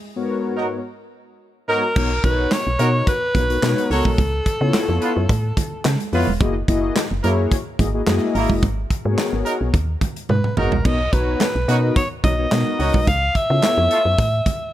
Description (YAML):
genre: early-eighties boogie funk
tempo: 108 BPM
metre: 4/4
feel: straight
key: unclear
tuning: A4 = 438 Hz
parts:
  - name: mellow synth brass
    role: accompaniment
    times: 0.2-14.1 s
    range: G#2 to A#5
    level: -24 LUFS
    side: left 3 dB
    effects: chorus
  - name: warm horn section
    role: second line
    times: 0.6-14.0 s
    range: A3 to C#5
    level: -26 LUFS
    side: right 2 dB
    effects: none
  - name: breathy alto saxophone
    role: melody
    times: 1.7-6.1, 10.3-14.7 s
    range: A4 to E#5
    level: -22 LUFS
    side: equal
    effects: none
  - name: woody FM bass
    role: bass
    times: 2.0-14.4 s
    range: E1 to C#3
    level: -21 LUFS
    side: equal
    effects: none
  - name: modern studio drum kit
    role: drums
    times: 2.0-14.6 s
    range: crash cymbal, handclaps, hi-hat, kick drum, snare drum, toms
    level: -22 LUFS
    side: equal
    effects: none
  - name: congas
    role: percussion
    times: 2.0-14.6 s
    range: none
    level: -29 LUFS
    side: right 8 dB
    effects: none
room: small room ambience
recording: none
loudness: -17 LUFS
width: side -13 dB against mid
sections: 0.0-2.0 A section; 2.0-14.7 A section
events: break 0.0-2.0; drum fill 10.3-10.8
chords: 0.0 G#m11; 2.0 Bmaj9; 4.2 C#7alt; 6.4 F#13; 8.6 G#m11; 10.8 Bmaj9; 13.1 C#7alt